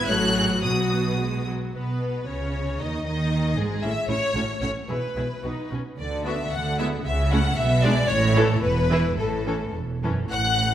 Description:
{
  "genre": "quick classical-period movement for string orchestra",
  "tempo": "106-117 BPM",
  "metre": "2/4",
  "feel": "rubato",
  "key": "A major from 6.0 s",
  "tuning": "A4 = 441 Hz",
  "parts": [
    { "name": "warm symphonic violin section", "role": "melody", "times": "0.0-10.7 s", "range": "E4 to F#6", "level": "-30 LUFS", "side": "left 2 dB", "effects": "none" },
    { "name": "rich symphonic violin section", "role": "second line", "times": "0.0-10.7 s", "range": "F#4 to F#5", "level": "-27 LUFS", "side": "left 2 dB", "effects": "none" },
    { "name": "clear symphonic viola section", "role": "accompaniment", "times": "0.0-10.2 s", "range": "E3 to F#4", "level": "-29 LUFS", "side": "equal", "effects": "none" },
    { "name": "rich chamber cello section", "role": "bass", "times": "0.0-10.7 s", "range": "E2 to D#3", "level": "-28 LUFS", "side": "right 1 dB", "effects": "none" },
    { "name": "warm symphonic double bass section", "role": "bass", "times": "0.0-10.7 s", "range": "E1 to D#2", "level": "-27 LUFS", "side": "right 2 dB", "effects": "none" }
  ],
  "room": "moderate concert hall reverb, RT60 1.8 s",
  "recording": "none",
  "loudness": "-21 LUFS",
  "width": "side -11 dB against mid",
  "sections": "0.0-1.7 A section; 1.7-10.3 B section",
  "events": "none",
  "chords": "0.1 F#m/A; 0.6 B; 1.7 N.C.; 2.8 G#5/D#; 3.8 A; 4.9 E/B; 5.4 B; 6.0 Bm/D; 6.5 E7/D; 7.1 A/C#; 7.6 G#dim/B; 8.1 A; 8.6 E; 9.2 A",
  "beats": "0.09 | 0.63 1.19 | 1.74 2.28 | 2.80 3.32 | 3.83 4.35 | 4.89 5.45 | 5.99 6.53 | 7.06 7.58 | 8.10 8.63 | 9.18 9.75 | 10.31"
}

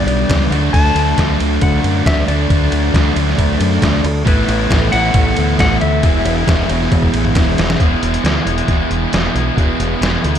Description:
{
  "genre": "classic rock",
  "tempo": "136 BPM",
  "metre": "4/4",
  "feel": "straight",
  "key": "E mixolydian",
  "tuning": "A4 = 436 Hz",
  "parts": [
    { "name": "clean lap steel guitar", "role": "melody", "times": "0.0-7.3 s", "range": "B4 to A5", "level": "-21 LUFS", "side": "left 3 dB", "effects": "slapback echo, tape echo" },
    { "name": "tonewheel organ", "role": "sustained chords", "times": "0.0-7.8 s", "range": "A3 to E5", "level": "-28 LUFS", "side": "right 1 dB", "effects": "none" },
    { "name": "overdriven electric guitar", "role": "riff", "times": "0.0-10.4 s", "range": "D3 to A4", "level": "-20 LUFS", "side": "left 11 dB", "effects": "slapback echo" },
    { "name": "sludgy distorted guitar", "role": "riff", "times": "0.0-10.4 s", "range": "E2 to D4", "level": "-20 LUFS", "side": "right 11 dB", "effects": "overdrive, slapback echo" },
    { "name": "growling fingered electric bass", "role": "bass", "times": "0.0-10.4 s", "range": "E1 to F#2", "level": "-18 LUFS", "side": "equal", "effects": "overdrive" },
    { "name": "trip hop sampler-style drum kit", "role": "drums", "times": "0.1-10.4 s", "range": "crash cymbal, hi-hat, kick drum, ride cymbal, snare drum, toms", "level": "-17 LUFS", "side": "equal", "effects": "none" }
  ],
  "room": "light reverb",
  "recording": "none",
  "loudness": "-12 LUFS",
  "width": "side -9 dB against mid",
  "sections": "0.0-7.8 A section; 7.8-10.4 B section",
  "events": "drum fill 6.9-7.8",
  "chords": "0.0 G; 0.5 D; 4.3 Asus2; 6.0 E",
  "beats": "0.30 | 0.74 1.18 1.62 2.06 | 2.50 2.94 3.39 3.83 | 4.27 4.71 5.15 5.59 | 6.04 6.48 6.92 7.36 | 7.80 8.25 8.69 9.13 | 9.58 10.02"
}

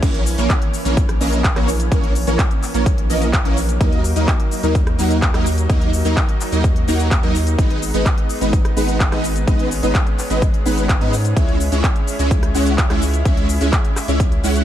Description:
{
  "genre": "EDM, festival progressive house",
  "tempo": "127 BPM",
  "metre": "4/4",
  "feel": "straight",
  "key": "G# minor",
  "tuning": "A4 = 444 Hz",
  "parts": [
    { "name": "lush unison pad", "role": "sustained chords", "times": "0.0-14.6 s", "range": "E3 to E4", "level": "-27 LUFS", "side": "equal", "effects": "chorus, sidechain pumping" },
    { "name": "supersaw chords", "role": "riff", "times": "0.0-14.6 s", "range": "E3 to F#5", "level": "-21 LUFS", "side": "right 1 dB", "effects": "ensemble chorus, sidechain pumping, dub echo" },
    { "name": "saturated sub bass", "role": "bass", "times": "0.0-14.6 s", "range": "G#1 to G#2", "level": "-20 LUFS", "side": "equal", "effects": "sidechain pumping" },
    { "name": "big-room dance drum kit", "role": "drums", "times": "0.0-14.6 s", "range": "crash cymbal, handclaps, hi-hat, rim click, shaker", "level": "-26 LUFS", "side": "left 1 dB", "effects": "overdrive, studio reverb" },
    { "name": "electronic kick drum", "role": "drums", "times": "0.0-14.3 s", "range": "none", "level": "-17 LUFS", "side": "equal", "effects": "overdrive, studio reverb" }
  ],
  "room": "little or no reverb",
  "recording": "dark, warm production",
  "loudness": "-15 LUFS",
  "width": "side -11 dB against mid",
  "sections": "0.0-14.6 A section",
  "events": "none",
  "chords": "0.0 A#dim; 3.8 D#m; 7.6 G#m; 11.4 C#m",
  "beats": "| 0.03 0.50 0.97 1.44 | 1.92 2.39 2.86 3.33 | 3.81 4.28 4.75 5.22 | 5.70 6.17 6.64 7.11 | 7.59 8.06 8.53 9.00 | 9.48 9.95 10.42 10.89 | 11.37 11.84 12.31 12.78 | 13.26 13.73 14.20"
}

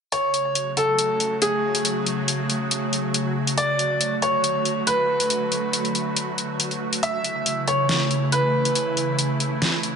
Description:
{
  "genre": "heavy wobble dubstep",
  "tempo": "139 BPM",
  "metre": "4/4",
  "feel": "half-time",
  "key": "F# minor",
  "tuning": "A4 = 440 Hz",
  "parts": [
    { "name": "bright grand piano", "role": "melody", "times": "0.1-10.0 s", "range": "G#4 to E5", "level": "-23 LUFS", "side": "equal", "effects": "ping-pong delay" },
    { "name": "evolving wavetable pad", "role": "sustained chords", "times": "0.4-10.0 s", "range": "C#3 to F#4", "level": "-25 LUFS", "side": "right 1 dB", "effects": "ensemble chorus, built-in reverb" },
    { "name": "dubstep drum kit", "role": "drums", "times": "0.1-9.9 s", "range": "hi-hat, snare drum", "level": "-24 LUFS", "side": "left 1 dB", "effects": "overdrive" }
  ],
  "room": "moderate digital room reverb, RT60 1.2 s",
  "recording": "nothing above 10.7 kHz",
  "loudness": "-20 LUFS",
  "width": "side -6 dB against mid",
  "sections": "0.1-10.0 A section",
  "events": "none",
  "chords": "0.1 F#m; 3.6 D; 7.0 A",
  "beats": "| 0.12 0.55 0.99 1.42 | 1.85 2.28 2.71 3.14 | 3.58 4.01 4.44 4.87 | 5.30 5.73 6.17 6.60 | 7.03 7.46 7.89 8.32 | 8.76 9.19 9.62"
}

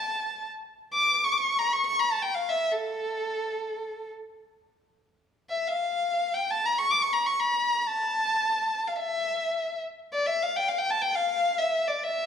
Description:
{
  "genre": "Persian modal ensemble",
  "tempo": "free time",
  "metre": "none",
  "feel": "none",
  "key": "A dastgah homayun",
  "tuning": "A4 = 439 Hz",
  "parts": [
    { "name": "warm violin", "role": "solo", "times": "0.0-12.3 s", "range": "A4 to D6", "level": "-25 LUFS", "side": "left 1 dB", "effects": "none" }
  ],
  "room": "wet recital hall reverb, RT60 1.7 s",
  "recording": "none",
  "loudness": "-25 LUFS",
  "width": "side -8 dB against mid",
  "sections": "0.0-5.3 A section; 5.3-12.3 A section",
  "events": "none",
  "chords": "none",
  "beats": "free time"
}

